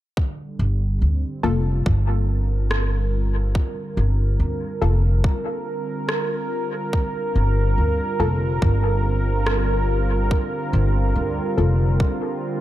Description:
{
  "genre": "ambient dub",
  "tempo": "71 BPM",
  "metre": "4/4",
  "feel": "swing 58% on 16ths",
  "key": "G minor",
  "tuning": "A4 = 440 Hz",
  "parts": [
    { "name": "warm analog pad", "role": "sustained chords", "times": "0.2-12.6 s", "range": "D3 to Bb4", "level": "-26 LUFS", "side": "right 1 dB", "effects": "chorus" },
    { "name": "electronic kick drum", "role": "drums", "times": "0.2-12.2 s", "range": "none", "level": "-22 LUFS", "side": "equal", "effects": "overdrive" },
    { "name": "upright bass", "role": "bass", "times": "0.6-12.0 s", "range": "F1 to D2", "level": "-19 LUFS", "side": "equal", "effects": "tube saturation" },
    { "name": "filtered dub chord stab", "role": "stabs", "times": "1.4-11.8 s", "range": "Bb3 to A4", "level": "-29 LUFS", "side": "left 5 dB", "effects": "chorus, cassette tape, dub echo" },
    { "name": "electronic rim click", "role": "drums", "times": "2.7-9.7 s", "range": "none", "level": "-29 LUFS", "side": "equal", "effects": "dub echo" }
  ],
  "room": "digital ambience",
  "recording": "none",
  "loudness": "-19 LUFS",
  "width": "side -14 dB against mid",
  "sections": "0.2-12.6 A section",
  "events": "none",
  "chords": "0.2 Gm9",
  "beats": "| 0.17 1.02 1.86 2.71 | 3.55 4.40 5.24 6.09 | 6.93 7.78 8.62 9.47 | 10.31 11.16 12.00"
}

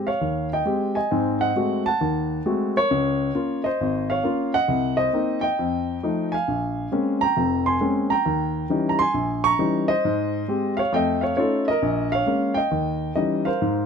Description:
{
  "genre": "solo jazz",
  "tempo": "134 BPM",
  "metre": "4/4",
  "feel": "swing 66% on 8ths",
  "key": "Ab major",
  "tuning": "A4 = 440 Hz",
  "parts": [
    { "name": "warm grand piano", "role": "solo", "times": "0.0-13.9 s", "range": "F1 to Db6", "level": "-20 LUFS", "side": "equal", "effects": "none" }
  ],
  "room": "light reverb",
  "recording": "close, detailed microphones",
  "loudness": "-20 LUFS",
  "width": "side -6 dB against mid",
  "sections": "0.0-13.6 A section",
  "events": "none",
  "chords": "0.0 Abmaj7; 1.1 Ab7b9; 2.9 Db6; 4.7 Cm7b5; 5.6 F7; 6.5 Bbm9; 8.3 Eb7b9; 10.0 Abmaj7; 10.9 F7b13; 11.8 Bbm7; 12.7 Eb7b9",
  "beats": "0.22 0.67 | 1.11 1.56 2.01 2.45 | 2.90 3.35 3.79 4.24 | 4.69 5.13 5.58 6.03 | 6.47 6.92 7.36 7.81 | 8.26 8.70 9.15 9.59 | 10.04 10.49 10.93 11.38 | 11.82 12.27 12.72 13.16 | 13.61"
}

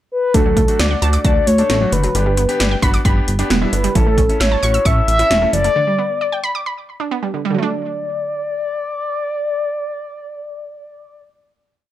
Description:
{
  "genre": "synth-pop",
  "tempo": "133 BPM",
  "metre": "4/4",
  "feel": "straight",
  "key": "D major",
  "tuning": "A4 = 441 Hz",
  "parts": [
    { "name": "mellow horn-like synth lead", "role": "melody", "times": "0.1-11.2 s", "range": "A4 to E5", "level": "-19 LUFS", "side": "left 1 dB", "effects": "chorus" },
    { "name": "clear concert grand piano", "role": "accompaniment", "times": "0.3-5.7 s", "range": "A3 to A4", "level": "-25 LUFS", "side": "left 2 dB", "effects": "none" },
    { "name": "wide unison pluck", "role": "arpeggios", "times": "0.3-11.3 s", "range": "D3 to E6", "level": "-22 LUFS", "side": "moving between left 1 dB and right 6 dB", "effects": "auto-pan, analog delay" },
    { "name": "chorused synth bass", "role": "bass", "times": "0.3-5.7 s", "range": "E1 to D2", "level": "-18 LUFS", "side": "equal", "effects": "none" },
    { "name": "80s electronic pad drums", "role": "drums", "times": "0.3-5.7 s", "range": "hi-hat, kick drum, snare drum", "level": "-18 LUFS", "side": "equal", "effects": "none" }
  ],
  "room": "light reverb",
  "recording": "dry, gritty hardware recording",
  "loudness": "-14 LUFS",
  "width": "side -13 dB against mid",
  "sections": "0.0-0.3 pickup bar; 0.3-7.6 verse; 7.6-11.2 final chord",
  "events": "none",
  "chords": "0.3 D; 2.1 G; 4.0 A; 5.8 G; 7.6 D",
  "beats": "| 0.34 0.80 1.25 1.70 | 2.15 2.60 3.05 3.50 | 3.95 4.40 4.86 5.31 | 5.76 6.21 6.66 7.11 | 7.56 8.01 8.46 8.92 | 9.37 9.82 10.27 10.72"
}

